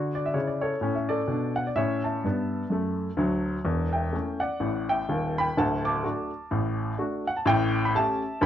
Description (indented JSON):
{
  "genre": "jazz, stride piano",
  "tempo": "126 BPM",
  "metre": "4/4",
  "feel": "swing 59% on 8ths",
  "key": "D major",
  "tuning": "A4 = 441 Hz",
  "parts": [
    { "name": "warm baby grand piano", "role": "solo", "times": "0.0-8.5 s", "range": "D1 to D6", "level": "-24 LUFS", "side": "equal", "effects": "none" }
  ],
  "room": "light reverb",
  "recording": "worn, warbling old tape, cassette tape, warbly pitch drift",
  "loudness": "-24 LUFS",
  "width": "side -10 dB against mid",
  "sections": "0.0-8.5 A section",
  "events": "none",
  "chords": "0.0 D; 1.8 A7; 3.7 A7/E; 5.6 D; 7.5 A7"
}